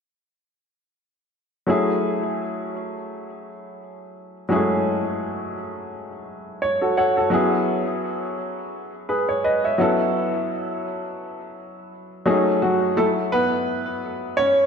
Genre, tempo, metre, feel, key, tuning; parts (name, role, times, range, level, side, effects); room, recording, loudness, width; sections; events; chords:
R&B; 85 BPM; 4/4; swing 56% on 16ths; F# minor; A4 = 440 Hz
clear upright piano; solo; 1.7-14.7 s; F#3 to F#5; -21 LUFS; equal; ping-pong delay
wet lush hall reverb, RT60 1.9 s, small room ambience; dreamy mix soaked in reverb; -20 LUFS; side -6 dB against mid
1.7-13.0 A section; 13.0-14.7 B section
upright piano fill 6.2-7.3; upright piano solo 13.0-14.7
1.7 F#m7; 7.3 E69; 9.8 A69; 12.2 F#m69; 13.0 F#7(no3)